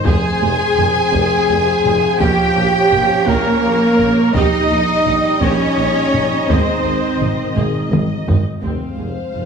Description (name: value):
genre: cinematic, epic orchestral film score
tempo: 56 BPM (dotted quarters)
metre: 6/8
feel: straight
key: F minor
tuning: A4 = 440 Hz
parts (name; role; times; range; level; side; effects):
- rich symphonic viola section; accompaniment; 0.0-9.4 s; C4 to Eb5; -25 LUFS; right 1 dB; none
- clear trombone section; sustained chords; 0.0-8.3 s; Eb3 to Eb4; -25 LUFS; right 2 dB; none
- warm symphonic violin section; melody; 0.1-9.5 s; Bb4 to Ab5; -25 LUFS; left 5 dB; none
- warm symphonic violin section; second line; 0.1-9.5 s; Bb4 to Ab5; -23 LUFS; left 3 dB; none
- dark French horn section; sustained chords; 0.1-9.5 s; Ab3 to Ab4; -22 LUFS; left 4 dB; none
- clear trumpet section; stabs; 0.1-7.6 s; Bb4 to Ab5; -21 LUFS; right 3 dB; none
- bright symphonic double bass section; bass; 0.1-9.4 s; F1 to Bb1; -24 LUFS; right 3 dB; none
- mellow tuba; bass; 0.1-9.5 s; F1 to Bb1; -23 LUFS; right 3 dB; none
- rich symphonic cello section; bass; 0.1-9.4 s; F2 to Ab4; -20 LUFS; right 3 dB; none
- taiko ensemble; drums; 0.1-9.5 s; none; -22 LUFS; equal; none
room: wet scoring stage reverb, RT60 1.6 s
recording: heavily compressed radio sound, multiband compression, studio ambience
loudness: -13 LUFS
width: side -6 dB against mid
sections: 0.0-8.6 A section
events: drum fill 7.6-8.6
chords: 0.1 Fm; 2.2 Bbm; 4.3 Eb/Bb; 6.5 Ab; 8.6 Fm